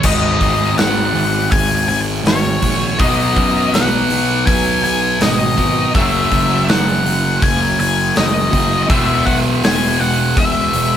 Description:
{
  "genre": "quiet-loud alternative rock",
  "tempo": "81 BPM",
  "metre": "4/4",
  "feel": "straight",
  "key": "G# minor",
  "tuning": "A4 = 440 Hz",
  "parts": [
    { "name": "octave-fuzz lead guitar", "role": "melody", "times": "0.0-11.0 s", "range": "C#5 to G#5", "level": "-18 LUFS", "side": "left 4 dB", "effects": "distortion" },
    { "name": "raw garage guitar", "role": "riff", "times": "0.0-11.0 s", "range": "F#2 to E4", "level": "-23 LUFS", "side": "left 6 dB", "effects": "overdrive" },
    { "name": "thick fuzz guitar", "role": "riff", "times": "0.0-11.0 s", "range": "E2 to B3", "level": "-19 LUFS", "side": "right 5 dB", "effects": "distortion" },
    { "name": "fuzz picked electric bass", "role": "bass", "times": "0.0-11.0 s", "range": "E1 to F#2", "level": "-21 LUFS", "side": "equal", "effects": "overdrive" },
    { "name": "big rock drum kit", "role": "drums", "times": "0.0-10.9 s", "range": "crash cymbal, hi-hat, kick drum, snare drum", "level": "-18 LUFS", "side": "equal", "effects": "none" }
  ],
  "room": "moderate studio reverb, RT60 0.7 s",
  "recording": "band playing live in one room",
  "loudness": "-12 LUFS",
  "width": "side -9 dB against mid",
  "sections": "0.0-11.0 A section",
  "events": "none",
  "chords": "0.0 G#m7; 3.0 B; 5.9 F#; 8.9 E"
}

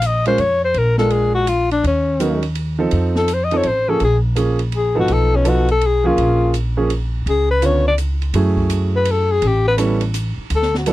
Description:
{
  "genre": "jazz, small-group swing and bop",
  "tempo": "166 BPM",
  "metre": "3/4",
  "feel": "swing 64% on 8ths",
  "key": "Bb minor",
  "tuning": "A4 = 440 Hz",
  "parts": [
    { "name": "breathy alto saxophone", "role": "melody", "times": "0.0-10.9 s", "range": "Db4 to Eb5", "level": "-17 LUFS", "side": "left 3 dB", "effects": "none" },
    { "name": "upright bass", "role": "bass", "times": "0.0-10.9 s", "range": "Ab1 to F#2", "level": "-19 LUFS", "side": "equal", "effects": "none" },
    { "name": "open jazz drum kit", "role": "drums", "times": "0.0-10.9 s", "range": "hi-hat, kick drum, ride cymbal, snare drum", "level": "-31 LUFS", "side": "right 2 dB", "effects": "none" },
    { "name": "warm grand piano", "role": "accompaniment", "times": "0.3-10.9 s", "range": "D3 to Bb4", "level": "-20 LUFS", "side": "right 4 dB", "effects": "none" }
  ],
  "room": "little or no reverb",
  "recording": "dry, close 1970s-style studio recording",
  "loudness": "-15 LUFS",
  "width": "side -16 dB against mid",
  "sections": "0.0-8.3 A section; 8.3-10.9 B section",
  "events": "none",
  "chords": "0.0 Bbm7; 0.8 Bb7; 1.8 Ebm7; 2.9 F7; 4.0 Bbm7; 5.1 B7#11; 6.2 Bbm7; 7.3 Db7b9; 8.3 F#m9; 9.4 A9"
}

